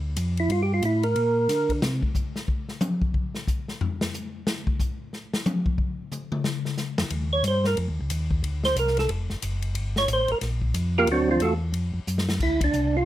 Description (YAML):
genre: soul jazz organ trio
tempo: 182 BPM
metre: 4/4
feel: swing 62% on 8ths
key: G dorian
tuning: A4 = 441 Hz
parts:
  - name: mellow tonewheel organ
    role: bass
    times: 0.0-2.0, 7.0-13.1 s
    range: E#1 to D3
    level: -26 LUFS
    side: equal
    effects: slow rotary speaker
  - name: swinging big-band drum kit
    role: drums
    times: 0.2-12.8 s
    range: crash cymbal, hi-hat, kick drum, ride cymbal, snare drum, toms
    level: -28 LUFS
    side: left 2 dB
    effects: none
  - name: percussive tonewheel organ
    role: melody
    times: 0.4-1.7, 7.3-13.1 s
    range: E#3 to Db5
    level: -22 LUFS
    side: right 2 dB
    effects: slow rotary speaker, chorus vibrato
room: moderate studio reverb, RT60 0.5 s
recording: none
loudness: -23 LUFS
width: side -13 dB against mid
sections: 0.0-12.4 A section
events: tonewheel organ solo 0.0-12.4; drum solo 1.8-7.1; drum fill 12.1-12.4; band accent 12.6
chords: 0.0 Gm7; 1.8 N.C.; 7.1 Eb7; 8.4 D7#9; 9.8 Gm7; 11.1 D7#9; 12.4 G7(no3) (rootless)